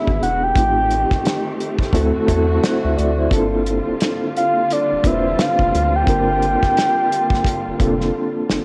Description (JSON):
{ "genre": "R&B, neo-soul", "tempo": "87 BPM", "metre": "4/4", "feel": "swing 60% on 16ths", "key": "G dorian", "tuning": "A4 = 439 Hz", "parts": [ { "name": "soft octave-layered synth lead", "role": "melody", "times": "0.0-8.2 s", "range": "D5 to G5", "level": "-21 LUFS", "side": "equal", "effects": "chorus, cassette tape" }, { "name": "mellow reed electric piano", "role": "accompaniment", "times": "0.0-8.6 s", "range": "A3 to E5", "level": "-23 LUFS", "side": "equal", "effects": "fast tremolo" }, { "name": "warm studio string section", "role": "sustained chords", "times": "0.0-8.6 s", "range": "D3 to G4", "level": "-30 LUFS", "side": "equal", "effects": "none" }, { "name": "rubbery square bass", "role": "bass", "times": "0.1-8.6 s", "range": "E1 to E2", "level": "-24 LUFS", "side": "equal", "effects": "none" }, { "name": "warm soul drum kit", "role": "drums", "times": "0.1-8.6 s", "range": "hi-hat, kick drum, snare drum", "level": "-24 LUFS", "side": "equal", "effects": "none" } ], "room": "light reverb", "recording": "home recording on cassette", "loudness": "-18 LUFS", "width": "mono", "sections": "0.0-8.6 A section", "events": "drum fill 8.1-8.6", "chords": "0.0 E7; 0.6 Am7b5; 1.9 D7; 3.3 Gm7", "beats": "| 0.56 1.24 1.93 2.62 | 3.31 4.00 4.69 5.38 | 6.07 6.76 7.45 8.14" }